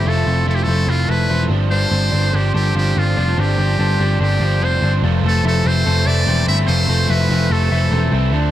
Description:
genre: indie pop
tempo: 145 BPM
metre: 4/4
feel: straight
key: unclear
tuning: A4 = 441 Hz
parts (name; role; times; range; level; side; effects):
- trumpet with metal mute; melody; 0.0-8.1 s; F4 to E5; -21 LUFS; equal; cassette tape, analog delay
- overdriven semi-hollow guitar; accompaniment; 0.0-8.5 s; F2 to E4; -24 LUFS; right 11 dB; cassette tape
- twelve-string electric guitar; arpeggios; 0.0-8.5 s; G2 to E4; -24 LUFS; left 11 dB; tube saturation, cassette tape
- vintage muted picked electric bass; bass; 0.0-8.5 s; E1 to D2; -16 LUFS; equal; none
room: light reverb, digital ambience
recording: home recording on cassette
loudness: -14 LUFS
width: side -12 dB against mid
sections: 0.0-5.0 A section; 5.0-8.5 B section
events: none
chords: 0.0 Fmaj7; 1.5 G7sus4; 5.0 Fmaj7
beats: | 0.07 0.48 0.90 1.31 | 1.72 2.14 2.55 2.97 | 3.38 3.79 4.21 4.62 | 5.03 5.45 5.86 6.27 | 6.69 7.10 7.51 7.92 | 8.34

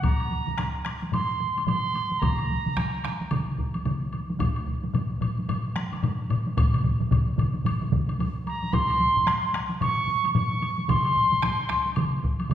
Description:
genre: japanese traditional, taiko drum ensemble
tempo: 111 BPM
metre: 4/4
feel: swing 60% on 16ths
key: unclear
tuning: A4 = 441 Hz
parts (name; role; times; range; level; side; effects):
- mellow piccolo; melody; 0.0-3.3, 8.5-11.9 s; Bb5 to Db6; -26 LUFS; right 1 dB; none
- taiko ensemble; percussion; 0.0-12.5 s; none; -31 LUFS; equal; none
- taiko ensemble; percussion; 0.0-10.5 s; none; -29 LUFS; left 2 dB; none
- taiko ensemble; percussion; 0.0-12.4 s; none; -29 LUFS; equal; none
- woodblock; percussion; 0.0-12.5 s; none; -38 LUFS; left 2 dB; none
- taiko ensemble; percussion; 2.2-12.5 s; none; -29 LUFS; right 2 dB; none
room: wet recital hall reverb, RT60 1.8 s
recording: recorded in a church or concert hall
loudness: -23 LUFS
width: side -10 dB against mid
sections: 0.0-12.5 A section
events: none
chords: none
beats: | 0.03 0.58 1.13 1.68 | 2.22 2.77 3.31 3.86 | 4.40 4.95 5.49 6.03 | 6.57 7.12 7.66 8.20 | 8.74 9.28 9.81 10.35 | 10.89 11.43 11.96 12.50

